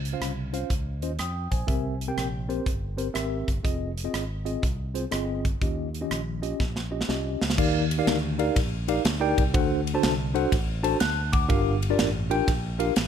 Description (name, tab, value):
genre	uptempo gospel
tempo	122 BPM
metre	4/4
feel	swing 66% on 8ths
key	unclear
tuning	A4 = 440 Hz
part	mellow tine electric piano	accompaniment	0.0-12.9 s	G2 to F#6	-27 LUFS	left 1 dB	medium stereo tremolo
part	fingered electric bass	bass	0.0-13.1 s	F1 to F2	-31 LUFS	equal	none
part	modern studio drum kit	drums	0.1-13.1 s	crash cymbal, hi-hat, kick drum, ride cymbal, rim click, snare drum	-27 LUFS	right 1 dB	none
room	little or no reverb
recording	none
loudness	-24 LUFS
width	side -8 dB against mid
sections	0.0-7.6 A section; 7.6-13.1 B section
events	drum fill 6.6-7.6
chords	0.0 Dbmaj9; 1.7 C7; 3.6 Fm7; 5.6 Eb9; 7.6 Ebmaj9; 9.5 D7; 11.5 Gm7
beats	0.21 0.70 1.19 | 1.68 2.17 2.66 3.15 | 3.65 4.14 4.63 5.12 | 5.61 6.11 6.60 7.09 | 7.58 8.07 8.56 9.05 | 9.54 10.03 10.52 11.01 | 11.50 11.99 12.48 12.97